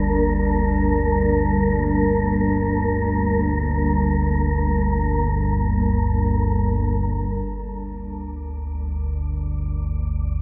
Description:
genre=dark ambient drone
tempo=free time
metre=none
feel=none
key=G minor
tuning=A4 = 441 Hz
part: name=deep dark ambient pad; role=sustained chords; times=0.0-7.5 s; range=G3 to A5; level=-26 LUFS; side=equal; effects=chorus, built-in reverb
part: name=analog drone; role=drone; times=0.0-10.4 s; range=G1 to D2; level=-24 LUFS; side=equal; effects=subtle chorus
part: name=wind-like tuned noise texture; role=texture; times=0.0-10.4 s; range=Bb3 to D5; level=-29 LUFS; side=equal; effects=built-in reverb
room=wet huge ambient reverb, RT60 8.2 s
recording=dreamy mix soaked in reverb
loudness=-21 LUFS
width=mono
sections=0.0-7.5 A section; 7.5-10.4 B section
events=none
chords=0.0 Gm; 7.5 G5

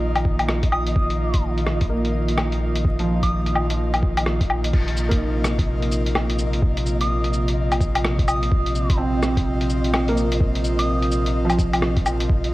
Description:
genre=future garage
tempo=127 BPM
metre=4/4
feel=swing 61% on 16ths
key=unclear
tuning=A4 = 439 Hz
part: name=felt-muted upright piano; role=accompaniment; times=0.0-12.3 s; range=F3 to Eb4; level=-28 LUFS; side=right 1 dB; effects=vintage 12-bit sampler grit, sidechain pumping, analog delay
part: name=airy breathy pad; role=sustained chords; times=0.0-12.5 s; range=C3 to F4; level=-26 LUFS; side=equal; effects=chorus, vintage 12-bit sampler grit, sidechain pumping
part: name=warm sub bass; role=bass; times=0.0-12.5 s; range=Bb1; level=-23 LUFS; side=equal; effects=sidechain pumping
part: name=flickering grainy texture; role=texture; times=0.0-12.5 s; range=Eb5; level=-33 LUFS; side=left 1 dB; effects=built-in reverb
part: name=electronic kick drum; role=drums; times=0.2-12.4 s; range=none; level=-21 LUFS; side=equal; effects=none
part: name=lo-fi sampler-style drum kit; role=drums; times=0.2-12.5 s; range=cabasa, crash cymbal, hi-hat, rim click, woodblock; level=-26 LUFS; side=left 1 dB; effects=none
part: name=soft synth bell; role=melody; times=0.7-3.5, 7.0-11.0 s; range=Eb6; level=-30 LUFS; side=right 1 dB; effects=chorus, vintage 12-bit sampler grit, tape echo
room=light reverb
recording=vinyl crackle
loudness=-18 LUFS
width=side -18 dB against mid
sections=0.0-4.7 A section; 4.7-12.5 B section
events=none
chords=0.0 Ebsus2/Bb; 4.7 Bbsus2

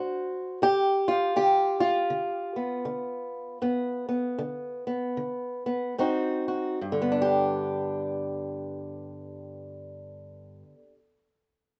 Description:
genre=acoustic country blues, solo or duo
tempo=71-82 BPM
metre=4/4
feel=swing 60% on 8ths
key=G mixolydian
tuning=A4 = 439 Hz
part: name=fingerpicked old ladder-braced acoustic guitar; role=solo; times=0.0-11.0 s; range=G2 to C5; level=-29 LUFS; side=equal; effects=none
room=light reverb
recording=band playing live in one room, nothing above 8.0 kHz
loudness=-28 LUFS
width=mono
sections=0.0-6.8 A section; 6.8-10.2 B section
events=slowing down 0.6-6.8; stop 3.6-6.0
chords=0.0 D7; 0.6 G7; 6.0 Ab7; 6.8 G

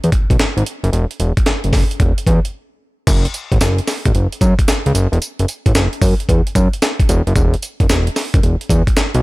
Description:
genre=R&B, new jack swing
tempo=112 BPM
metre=4/4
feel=swing 66% on 16ths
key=unclear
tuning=A4 = 441 Hz
part: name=fat analog bass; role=bass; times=0.0-9.2 s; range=E1 to F#2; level=-14 LUFS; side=equal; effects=none
part: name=breakbeat sampler-style drum kit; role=drums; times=0.0-9.2 s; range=crash cymbal, hi-hat, kick drum, snare drum, tambourine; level=-15 LUFS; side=equal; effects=none
room=digital ambience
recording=none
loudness=-13 LUFS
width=side -21 dB against mid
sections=0.0-3.1 A section; 3.1-9.2 B section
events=break 2.5-3.1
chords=none

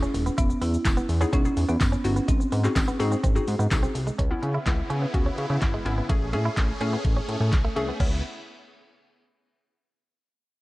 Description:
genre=dance-pop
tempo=126 BPM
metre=4/4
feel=straight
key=C# minor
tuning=A4 = 444 Hz
part: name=marimba with medium mallets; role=melody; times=0.0-3.7 s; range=B3 to E4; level=-29 LUFS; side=right 1 dB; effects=none
part: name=hollow square pluck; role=accompaniment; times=0.0-8.2 s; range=A3 to G#4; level=-31 LUFS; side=left 2 dB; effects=chorus, sidechain pumping
part: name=direct-recorded clean electric guitar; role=riff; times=0.0-8.1 s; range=G#3 to E4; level=-35 LUFS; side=right 3 dB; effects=analog chorus
part: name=chorused synth bass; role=bass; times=0.0-8.2 s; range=D#1 to C#3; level=-26 LUFS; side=equal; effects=sidechain pumping
part: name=pop drum kit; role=drums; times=0.0-8.1 s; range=crash cymbal, handclaps, hi-hat, kick drum, shaker, snare drum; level=-25 LUFS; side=equal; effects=none
part: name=tambourine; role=percussion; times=0.9-3.8 s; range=none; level=-45 LUFS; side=left 3 dB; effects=none
part: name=supersaw chords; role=sustained chords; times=4.2-8.2 s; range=C#3 to G#4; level=-34 LUFS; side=equal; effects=sidechain pumping
room=light reverb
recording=worn, warbling old tape, cassette tape, warbly pitch drift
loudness=-22 LUFS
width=side -19 dB against mid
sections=0.0-4.2 A section; 4.2-8.0 B section; 8.0-9.9 C section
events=none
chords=0.4 Emaj7; 2.3 G#7; 4.2 C#m7; 6.1 Amaj7; 8.0 C#m7

